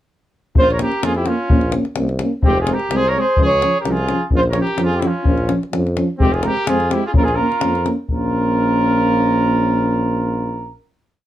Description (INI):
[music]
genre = balkan folk, Balkan brass band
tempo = 127 BPM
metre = 2/4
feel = swing 54% on 16ths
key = Bb minor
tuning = A4 = 441 Hz
[part]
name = warm flugelhorn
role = melody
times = 0.6-10.7 s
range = F4 to Db5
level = -20 LUFS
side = right 1 dB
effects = none
[part]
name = bright trumpet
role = second line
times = 0.6-10.7 s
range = C4 to Bb4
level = -26 LUFS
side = right 2 dB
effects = none
[part]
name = mellow euphonium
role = accompaniment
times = 0.6-10.7 s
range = C4 to Db4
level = -23 LUFS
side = left 4 dB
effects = none
[part]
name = mellow euphonium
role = accompaniment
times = 0.6-10.7 s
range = F3 to Bb3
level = -23 LUFS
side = right 4 dB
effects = none
[part]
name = warm tuba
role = bass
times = 0.6-10.7 s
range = F1 to F2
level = -22 LUFS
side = equal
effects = none
[part]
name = davul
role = percussion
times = 0.6-8.3 s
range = none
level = -19 LUFS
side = left 1 dB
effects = none
[sound]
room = light reverb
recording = dark, warm production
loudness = -15 LUFS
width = side -13 dB against mid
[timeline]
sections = 0.6-8.1 A section; 8.1-10.0 final chord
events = none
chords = 0.6 Bbm; 2.4 Fm; 3.4 Db; 4.3 Bbm; 6.2 Fm; 7.2 Bbm